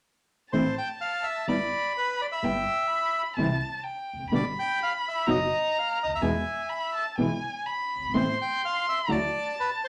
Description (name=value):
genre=tango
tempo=126 BPM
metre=4/4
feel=rubato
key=A minor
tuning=A4 = 440 Hz
part: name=bandoneon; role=melody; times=0.5-9.9 s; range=B4 to G5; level=-31 LUFS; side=equal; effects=none
part: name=warm violin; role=second line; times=0.5-9.9 s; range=G5 to C6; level=-33 LUFS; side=equal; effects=none
part: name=nylon-string guitar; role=accompaniment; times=0.5-9.2 s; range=B2 to G4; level=-29 LUFS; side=equal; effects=none
part: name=upright bass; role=bass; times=0.5-9.3 s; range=E1 to E2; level=-38 LUFS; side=equal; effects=none
room=wet club reverb, RT60 0.5 s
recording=none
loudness=-28 LUFS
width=mono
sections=0.5-9.9 A section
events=none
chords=0.5 Am; 1.5 Em/G; 3.4 C; 4.3 G; 5.3 B/F#; 6.2 E; 8.1 Amadd9; 9.1 Dadd9